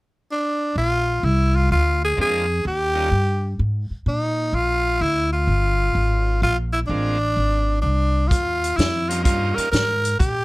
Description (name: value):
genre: electric blues shuffle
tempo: 127 BPM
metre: 4/4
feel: swing 67% on 8ths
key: Bb mixolydian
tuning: A4 = 441 Hz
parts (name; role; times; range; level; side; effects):
- growling tenor saxophone; melody; 0.3-10.4 s; D4 to Bb4; -21 LUFS; equal; none
- upright bass; bass; 0.8-10.4 s; G1 to Bb2; -21 LUFS; equal; none
- bright tonewheel organ; accompaniment; 2.2-3.1, 6.9-9.7 s; G3 to F4; -29 LUFS; right 4 dB; slow rotary speaker, overdrive
- vintage drum kit; drums; 8.3-10.3 s; hi-hat, kick drum, snare drum; -22 LUFS; equal; none
room: light reverb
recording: none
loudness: -18 LUFS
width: side -21 dB against mid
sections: 0.8-10.4 A section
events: none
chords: 0.0 N.C.; 0.8 Bb9; 2.6 Eb9; 4.5 Bb9; 8.3 Eb9